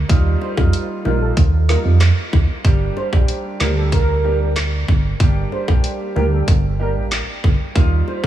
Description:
dancehall; 94 BPM; 4/4; straight; G minor; A4 = 441 Hz
solid FM bass; bass; 0.0-8.3 s; G1 to F2; -17 LUFS; right 1 dB
warm baby grand piano; accompaniment; 0.1-8.3 s; G3 to G4; -25 LUFS; right 2 dB; lush chorus, sidechain pumping
island pop drum kit; drums; 0.1-8.3 s; handclaps, hi-hat, kick drum, rim click, snare drum; -18 LUFS; equal
warm velvety synth lead; melody; 0.4-8.2 s; A4 to C5; -27 LUFS; right 2 dB; chorus, tape echo
bongos; percussion; 0.4-8.3 s; -33 LUFS; left 7 dB
light reverb; -15 LUFS; side -12 dB against mid
0.0-8.3 A section
0.0 Ebadd9; 2.6 Gm; 7.8 Ebadd9
| 0.10 0.73 1.37 2.01 | 2.65 3.29 3.92 4.56 | 5.20 5.84 6.48 7.12 | 7.75

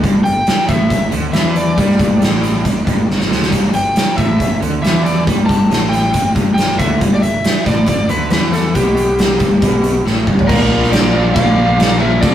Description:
classic rock; 138 BPM; 4/4; straight; A4 = 444 Hz
crunchy overdriven guitar; riff; 0.0-12.3 s; G2 to F4; -21 LUFS; right 4 dB
overdriven semi-hollow guitar; riff; 0.0-12.3 s; F2 to D4; -20 LUFS; left 3 dB; tremolo
fuzz fingered electric bass; bass; 0.0-12.3 s; F1 to G2; -21 LUFS; equal; overdrive
big rock drum kit; drums; 0.0-12.3 s; crash cymbal, hi-hat, kick drum, ride cymbal, snare drum, toms; -15 LUFS; equal
overdriven slide guitar; melody; 0.2-12.3 s; G4 to A5; -18 LUFS; left 1 dB
octave-fuzz lead guitar; second line; 10.5-12.3 s; F4 to D5; -28 LUFS; equal
moderate small room reverb, RT60 0.5 s; rough rehearsal-room recording, warm saturation; -12 LUFS; side -11 dB against mid
0.0-10.5 A section; 10.5-12.3 B section
drum fill 3.1-3.5, 10.1-10.5
0.0 G; 10.5 Bb
| 0.04 0.47 0.91 1.34 | 1.78 2.21 2.65 3.09 | 3.52 3.96 4.39 4.83 | 5.26 5.70 6.14 6.57 | 7.01 7.44 7.88 8.31 | 8.75 9.19 9.62 10.06 | 10.49 10.93 11.36 11.79 | 12.22

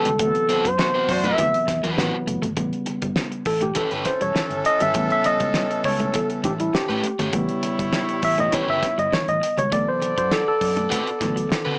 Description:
funk; 101 BPM; 4/4; straight; A mixolydian; A4 = 436 Hz
expressive synth lead; melody; 0.0-1.8 s; A4 to E5; -23 LUFS; equal; chorus
crunchy overdriven guitar; accompaniment; 0.0-11.8 s; C4 to C#5; -29 LUFS; equal
tine electric piano; stabs; 0.0-11.8 s; C3 to E5; -26 LUFS; equal
clean electric guitar; riff; 0.1-11.5 s; E3 to A3; -33 LUFS; equal
vintage muted fingered electric bass; bass; 0.1-11.8 s; E1 to D3; -32 LUFS; equal
cloth-damped thuddy drum kit; drums; 0.1-11.7 s; hi-hat, kick drum, snare drum; -30 LUFS; equal
congas; percussion; 0.1-11.7 s; -37 LUFS; equal
warm horn section; second line; 0.8-11.8 s; E3 to D5; -30 LUFS; equal
light reverb; small speaker sound; -22 LUFS; mono
0.0-2.6 A section; 2.6-11.8 B section
tine electric piano solo 2.6-11.8
0.2 D13 (rootless); 2.6 A9; 9.7 D13
| 0.20 0.79 1.39 1.98 | 2.57 3.17 3.76 4.36 | 4.95 5.55 6.14 6.74 | 7.34 7.93 8.53 9.12 | 9.72 10.31 10.91 11.50

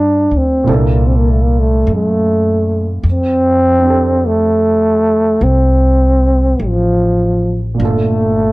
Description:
jazz ballad; 50 BPM; 4/4; swing 69% on 8ths; F major; A4 = 440 Hz
growling trombone; melody; 0.0-8.5 s; F3 to D4; -13 LUFS; equal
dark baby grand piano; accompaniment; 0.0-8.5 s; Bb2 to A4; -20 LUFS; right 3 dB
upright bass; bass; 0.0-8.5 s; G1 to G2; -15 LUFS; equal
light reverb; dark, warm production; -10 LUFS; side -20 dB against mid
0.0-8.5 A section
0.0 Gm9; 0.7 C13; 3.0 F6; 7.8 Gm7
0.68 1.87 | 3.05 4.23 5.42 6.61 | 7.80

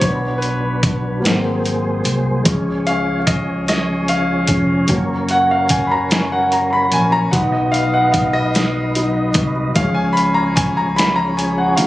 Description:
slow gospel; 49 BPM (dotted quarters); 6/8; straight; A4 = 440 Hz
warm concert grand piano; accompaniment; 0.0-11.9 s; E#3 to B5; -17 LUFS; left 1 dB
tonewheel organ; sustained chords; 0.0-11.9 s; E#3 to D#5; -22 LUFS; right 1 dB; slow rotary speaker, overdrive, chorus vibrato
fingered electric bass; bass; 0.0-11.9 s; E#1 to D2; -22 LUFS; equal
lo-fi sampler-style drum kit; drums; 0.0-11.9 s; hi-hat, kick drum, snare drum; -19 LUFS; equal; overdrive
light reverb; recorded on a phone in the room, club reverb; -14 LUFS; side -16 dB against mid
0.0-11.9 A section
grand piano solo 0.0-11.9
0.0 Bm; 1.2 G#9; 2.5 C#; 4.9 F#; 7.3 B; 9.8 C#
| 0.03 1.24 | 2.46 3.68 | 4.90 6.12 | 7.33 8.55 | 9.76 10.98

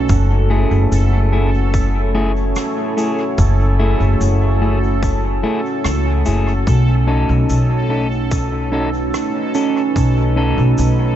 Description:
ambient dub; 73 BPM; 4/4; straight; F# dorian; A4 = 440 Hz
deep dark ambient pad; sustained chords; 0.0-11.2 s; A3 to C#5; -21 LUFS; right 1 dB; chorus, built-in reverb
handpan; arpeggios; 0.0-1.4, 9.6-11.2 s; C#4 to D#4; -27 LUFS; right 8 dB; tape echo
upright bass; bass; 0.0-11.2 s; F#1 to C#2; -15 LUFS; equal
bubbling stepped-filter texture; texture; 0.0-11.2 s; A4; -27 LUFS; equal; chorus, built-in reverb
electronic kick drum; drums; 0.1-10.1 s; -20 LUFS; equal; overdrive
shaker and rim click; drums; 0.1-10.9 s; -31 LUFS; right 2 dB; dub echo
semi-hollow electric guitar; stabs; 0.5-11.1 s; A3 to A4; -23 LUFS; left 2 dB; harmonic tremolo, dub echo
small room ambience; echo-heavy mix, nothing above 7.9 kHz; -14 LUFS; side -11 dB against mid
0.0-11.2 A section
0.1 F#m7; 6.7 B9
| 0.10 0.92 1.74 2.56 | 3.38 4.21 5.03 5.85 | 6.67 7.50 8.32 9.14 | 9.96 10.78

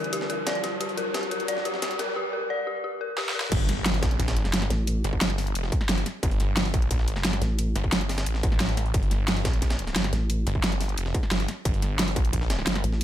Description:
dark technical drum and bass; 177 BPM; 4/4; straight; A4 = 439 Hz
metallic inharmonic drone; sustained chords; 0.0-2.1 s; D3 to D5; -41 LUFS; left 1 dB; chorus, built-in reverb, phaser, sidechain pumping
dubstep drum kit; drums; 0.0-13.0 s; crash cymbal, hi-hat, snare drum; -28 LUFS; equal; high-pass filter on hats, studio reverb, high-pass filter on snare, high-pass filter on cymbals
riser, impact and noise sweep; sound effects; 0.0-4.9, 13.0 s; -32 LUFS; equal
dark detuned synth bell; arpeggios; 0.1-3.4 s; G4 to D5; -29 LUFS; left 2 dB; chorus, sidechain pumping, dub echo
breakbeat sampler-style drum kit; drums; 0.1-13.0 s; hi-hat, snare drum; -35 LUFS; right 1 dB; high-pass filter on hats, studio reverb, high-pass filter on snare
snarling distorted saw bass; bass; 3.5-12.8 s; F1 to Bb1; -27 LUFS; equal; distortion, tube saturation, sidechain pumping
electronic kick drum; drums; 3.5-12.4 s; -27 LUFS; equal; distortion, studio reverb
vowel-sweep wobble bass; bass; 4.7-5.0, 7.4-7.7, 10.1-10.5, 12.8-13.0 s; A1; -24 LUFS; equal; chorus
light reverb; high-pass filter; -23 LUFS; side -11 dB against mid
0.0-3.5 A section; 3.5-13.0 B section
build-up 0.0-3.5; riser 0.0-2.2; filter sweep on synth drone 0.0-3.5; drum fill 3.2-3.5; drop 3.5-13.0; impact 3.5-4.9
0.0 G5; 3.5 Fadd9 (rootless)
0.13 0.47 | 0.81 1.15 1.48 1.82 | 2.16 2.50 2.84 3.18 | 3.52 3.86 4.20 4.54 | 4.87 5.21 5.55 5.89 | 6.23 6.57 6.91 7.25 | 7.59 7.92 8.26 8.60 | 8.94 9.28 9.62 9.96 | 10.30 10.64 10.98 11.31 | 11.65 11.99 12.33 12.67 | 13.01

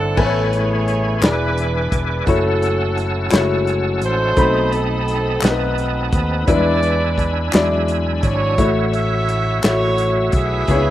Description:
slow gospel; 57 BPM (dotted quarters); 6/8; straight; A major; A4 = 438 Hz
warm horn section; melody; 0.0-10.9 s; C4 to E5; -22 LUFS; right 3 dB
warm upright piano; accompaniment; 0.0-10.9 s; A2 to B5; -20 LUFS; left 3 dB; slapback echo
bright tonewheel organ; sustained chords; 0.0-10.9 s; A3 to E6; -26 LUFS; right 1 dB; fast rotary speaker, overdrive, chorus vibrato
fingered electric bass; bass; 0.0-10.9 s; E1 to E2; -21 LUFS; equal
warm soul drum kit; drums; 0.2-10.8 s; crash cymbal, hi-hat, kick drum, snare drum; -19 LUFS; equal
group handclap; percussion; 1.2-10.0 s; -26 LUFS; left 4 dB
little or no reverb; recorded outdoors, with no room sound; -15 LUFS; side -13 dB against mid
0.2-10.9 A section
0.2 Amaj9; 1.2 E7; 2.3 F#m7; 4.4 B7b9; 6.5 E7; 8.6 A6
| 0.18 1.23 | 2.28 3.33 | 4.38 5.43 | 6.48 7.53 | 8.58 9.63 | 10.68

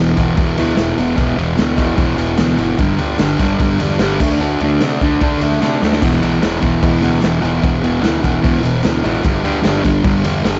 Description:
garage rock duo or trio; 149 BPM; 4/4; straight; E minor; A4 = 441 Hz
fuzz guitar; riff; 0.0-10.6 s; E2 to D4; -17 LUFS; equal; distortion, cassette tape
fretless electric bass; bass; 0.0-10.6 s; E1 to C3; -26 LUFS; equal
raw garage drum kit; drums; 0.2-10.5 s; crash cymbal, kick drum, ride cymbal, snare drum; -21 LUFS; equal; vintage 12-bit sampler grit
tambourine; percussion; 0.2-10.6 s; -44 LUFS; equal
light reverb, small room ambience; home recording on cassette, nothing above 7.9 kHz; -15 LUFS; mono
0.0-10.6 A section
drum fill 5.6-6.0
0.0 E5; 2.8 G5; 4.2 D5; 6.0 E5; 9.2 G5
0.38 0.79 | 1.19 1.59 1.99 2.40 | 2.80 3.20 3.60 4.01 | 4.41 4.81 5.21 5.62 | 6.02 6.42 6.83 7.23 | 7.63 8.04 8.44 8.84 | 9.25 9.65 10.05 10.46

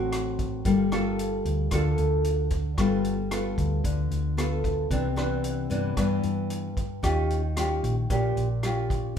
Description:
bossa nova; 113 BPM; 4/4; straight; A4 = 440 Hz
nylon-string guitar; accompaniment; 0.0-9.2 s; G2 to Bb4; -26 LUFS; left 1 dB
hollow-body short-scale fingered electric bass; bass; 0.0-9.1 s; G1 to G2; -28 LUFS; equal
vintage drum kit; drums; 0.1-9.2 s; hi-hat, kick drum, rim click; -32 LUFS; equal
moderate large studio reverb, RT60 0.8 s; heard from further back in the room; -24 LUFS; side -8 dB against mid
0.0-9.2 A section
0.0 D7b13 (rootless); 0.7 Gm9; 2.8 G9; 4.9 Cmaj9; 7.0 Eb9
0.12 | 0.66 1.19 1.72 2.25 | 2.78 3.31 3.85 4.38 | 4.91 5.44 5.97 6.51 | 7.04 7.57 8.10 8.64 | 9.17

